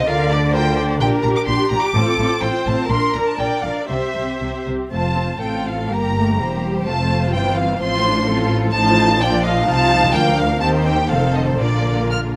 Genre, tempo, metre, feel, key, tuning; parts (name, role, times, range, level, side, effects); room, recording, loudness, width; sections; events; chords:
quick classical-period movement for string orchestra; 116-131 BPM; 2/4; rubato; F major, Bb major from 8.7 s; A4 = 440 Hz
rich chamber violin section; melody; 0.0-12.2 s; C5 to F6; -24 LUFS; equal
rich chamber violin section; second line; 0.0-12.4 s; F4 to F5; -26 LUFS; equal
dark chamber viola section; accompaniment; 0.0-12.4 s; D3 to D5; -25 LUFS; equal
rich chamber cello section; bass; 0.0-12.4 s; D2 to D3; -26 LUFS; equal
rich chamber double bass section; bass; 0.0-12.4 s; E1 to Eb2; -26 LUFS; equal
moderate recital hall reverb, RT60 1.5 s; close, detailed microphones; -18 LUFS; mono
0.0-4.9 A section; 4.9-12.4 B section
0.1 Bb/D; 1.0 Gm/Bb; 1.9 F/A; 2.9 Bb; 3.9 C; 4.9 F; 5.9 C7/G; 6.9 F; 7.8 F/A; 8.7 F7/A; 9.2 Bb; 9.7 F7/C; 10.1 Bb/D; 10.6 Cm/Eb; 11.1 F7; 11.6 Bb